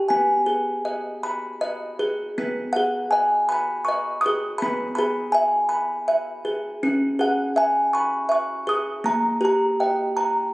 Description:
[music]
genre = children's music, lullaby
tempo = 54 BPM (dotted quarters)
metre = 6/8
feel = rubato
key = G# minor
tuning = A4 = 440 Hz
[part]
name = music box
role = solo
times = 0.0-10.5 s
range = A#3 to D#6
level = -20 LUFS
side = equal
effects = none
[sound]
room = moderate concert hall reverb, RT60 2.4 s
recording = recorded on a phone in the room, club reverb, compression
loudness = -20 LUFS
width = side -20 dB against mid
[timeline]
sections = 0.0-2.4 A section; 2.4-10.5 B section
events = none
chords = 0.1 G#m; 4.6 E; 6.8 C#m; 9.0 D#

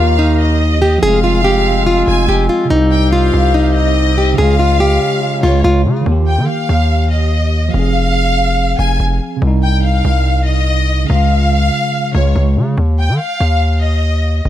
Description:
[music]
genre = hip hop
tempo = 143 BPM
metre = 4/4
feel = half-time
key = unclear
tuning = A4 = 441 Hz
[part]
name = nylon-string guitar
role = melody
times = 0.0-5.8 s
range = Eb4 to Ab4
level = -15 LUFS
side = equal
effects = ping-pong delay
[part]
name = warm studio violin section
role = second line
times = 0.0-14.4 s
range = Db5 to Ab5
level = -18 LUFS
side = left 2 dB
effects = ping-pong delay
[part]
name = tine electric piano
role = accompaniment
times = 0.0-12.8 s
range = C3 to Ab4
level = -19 LUFS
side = right 2 dB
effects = medium stereo tremolo
[part]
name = dark woodwind section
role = sustained chords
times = 0.0-6.0 s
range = C3 to Bb4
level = -24 LUFS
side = left 2 dB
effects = none
[part]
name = distorted 808-style bass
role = bass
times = 0.0-14.5 s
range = F1 to Eb3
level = -14 LUFS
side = equal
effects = distortion
[sound]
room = light reverb, small room ambience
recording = none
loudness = -11 LUFS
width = side -12 dB against mid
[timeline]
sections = 0.0-6.1 A section; 6.1-14.5 B section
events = none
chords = 0.0 Eb; 1.0 Fm; 2.7 Cm; 4.4 Db; 6.1 Eb; 7.7 Fm; 9.4 Cm; 11.1 Db; 12.8 Ebsus2

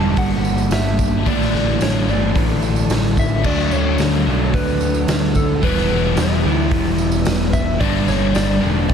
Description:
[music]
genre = rock, shoegaze and dream pop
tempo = 110 BPM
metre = 4/4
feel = straight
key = D major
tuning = A4 = 440 Hz
[part]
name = soft struck synth lead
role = melody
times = 0.0-8.9 s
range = A4 to A5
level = -25 LUFS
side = left 1 dB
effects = chorus, analog delay
[part]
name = granular cloud pad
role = sustained chords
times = 0.0-8.9 s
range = Bb3 to E6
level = -32 LUFS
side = right 1 dB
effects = built-in reverb
[part]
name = crunchy overdriven guitar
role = riff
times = 0.0-8.9 s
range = G2 to E4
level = -23 LUFS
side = left 11 dB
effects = lush chorus
[part]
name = crunchy overdriven guitar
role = riff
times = 0.0-8.9 s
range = G2 to E4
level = -25 LUFS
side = left 1 dB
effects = none
[part]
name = electric guitar through a small old amp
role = riff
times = 0.0-8.9 s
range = G2 to A4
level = -24 LUFS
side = right 11 dB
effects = reverse reverb
[part]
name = picked electric bass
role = bass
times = 0.0-8.9 s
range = E1 to D2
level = -21 LUFS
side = equal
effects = none
[part]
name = raw garage drum kit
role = drums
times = 0.2-8.9 s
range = crash cymbal, hi-hat, kick drum, snare drum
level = -21 LUFS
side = equal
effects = none
[part]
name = tambourine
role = percussion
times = 0.2-8.9 s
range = none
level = -37 LUFS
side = right 11 dB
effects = none
[sound]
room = light reverb, small room ambience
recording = dense, heavily limited modern master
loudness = -15 LUFS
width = side -7 dB against mid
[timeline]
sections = 0.0-8.9 A section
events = none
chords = 0.0 Gmadd9; 1.3 Asus4; 3.5 Dmaj7; 5.6 Em; 7.8 Gmadd9

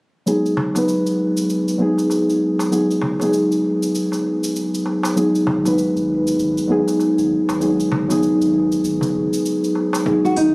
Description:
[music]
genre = organic downtempo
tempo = 98 BPM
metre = 4/4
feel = swing 60% on 16ths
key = G# minor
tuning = A4 = 441 Hz
[part]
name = muted felt-like synth keys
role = accompaniment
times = 0.3-10.5 s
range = F#3 to B4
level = -16 LUFS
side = equal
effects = chorus, sidechain pumping, digital delay
[part]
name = electronic shaker and hi-hat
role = drums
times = 0.3-10.5 s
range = none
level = -32 LUFS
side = equal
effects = none
[part]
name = darbuka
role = percussion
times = 0.6-10.0 s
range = none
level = -28 LUFS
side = equal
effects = none
[part]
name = warm sub bass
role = bass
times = 5.5-10.5 s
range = G#1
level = -30 LUFS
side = equal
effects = sidechain pumping
[part]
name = electronic kick drum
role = drums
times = 10.1-10.2 s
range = none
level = -28 LUFS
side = equal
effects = none
[part]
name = nylon-string guitar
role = arpeggios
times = 10.2-10.5 s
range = D#4 to F#4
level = -14 LUFS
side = equal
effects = none
[sound]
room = light reverb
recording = recorded on a phone in the room, studio reverb, compression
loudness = -16 LUFS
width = side -29 dB against mid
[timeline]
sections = 0.3-10.1 A section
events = none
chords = 0.3 G#m7

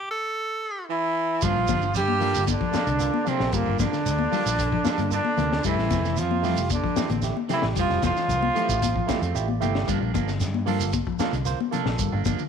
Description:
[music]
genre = afrobeat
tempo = 113 BPM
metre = 4/4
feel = straight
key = G dorian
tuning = A4 = 441 Hz
[part]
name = edgy tenor saxophone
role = melody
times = 0.0-0.9 s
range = A4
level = -28 LUFS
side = right 2 dB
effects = none
[part]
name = bright trombone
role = melody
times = 0.9-9.6 s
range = Bb3 to G4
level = -26 LUFS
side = equal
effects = none
[part]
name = raspy baritone saxophone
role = second line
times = 0.9-9.6 s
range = Bb2 to G3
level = -31 LUFS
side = right 12 dB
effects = none
[part]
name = mellow electric guitar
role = arpeggios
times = 1.4-12.5 s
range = C3 to A3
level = -32 LUFS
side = left 11 dB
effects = analog chorus
[part]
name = electric guitar at the edge of break-up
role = stabs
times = 1.4-12.4 s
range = E3 to D4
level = -33 LUFS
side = right 11 dB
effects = none
[part]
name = fingered electric bass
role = bass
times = 1.4-12.4 s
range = F1 to G2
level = -27 LUFS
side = equal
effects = none
[part]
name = crunchy breakbeat drum kit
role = drums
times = 1.4-12.4 s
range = hi-hat, kick drum, snare drum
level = -32 LUFS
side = left 3 dB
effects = none
[part]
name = shekere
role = percussion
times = 1.4-12.5 s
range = none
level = -34 LUFS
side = right 6 dB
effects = none
[part]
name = congas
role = percussion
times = 1.7-12.4 s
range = none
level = -30 LUFS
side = left 12 dB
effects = none
[part]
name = barky tine electric piano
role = accompaniment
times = 2.2-12.2 s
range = A3 to F5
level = -33 LUFS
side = right 12 dB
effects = none
[sound]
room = light reverb, small room ambience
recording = 1960s-style stereo with parts hard left and right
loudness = -22 LUFS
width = side -7 dB against mid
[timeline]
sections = 0.0-1.4 A section; 1.4-12.5 B section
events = tenor saxophone solo 0.0-1.4; stop 0.0-1.4; tine electric piano fill 9.1-9.9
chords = 0.0 Fmaj7 (rootless); 1.4 Gm7; 5.7 Fmaj7; 9.9 Gm7

